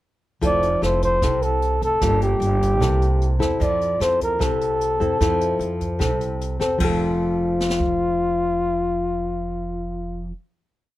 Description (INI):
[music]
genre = bossa nova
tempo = 150 BPM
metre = 4/4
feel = straight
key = F major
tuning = A4 = 437 Hz
[part]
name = nylon-string guitar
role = accompaniment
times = 0.4-10.4 s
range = C3 to A4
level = -24 LUFS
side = left 1 dB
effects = none
[part]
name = upright bass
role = bass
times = 0.4-10.3 s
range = F1 to F2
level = -25 LUFS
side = right 1 dB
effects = none
[part]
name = jazz brush drum kit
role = drums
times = 0.4-7.9 s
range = crash cymbal, hi-hat, kick drum, rim click, snare drum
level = -28 LUFS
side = right 1 dB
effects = none
[part]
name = breathy flugelhorn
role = melody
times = 0.5-10.3 s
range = F4 to D5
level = -22 LUFS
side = left 1 dB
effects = none
[sound]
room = little or no reverb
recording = none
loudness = -19 LUFS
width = side -15 dB against mid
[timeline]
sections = 0.4-6.8 A section; 6.8-10.0 final chord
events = none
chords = 0.4 Fmaj7; 2.0 Gm9; 2.8 C6; 3.6 Fmaj7; 6.8 F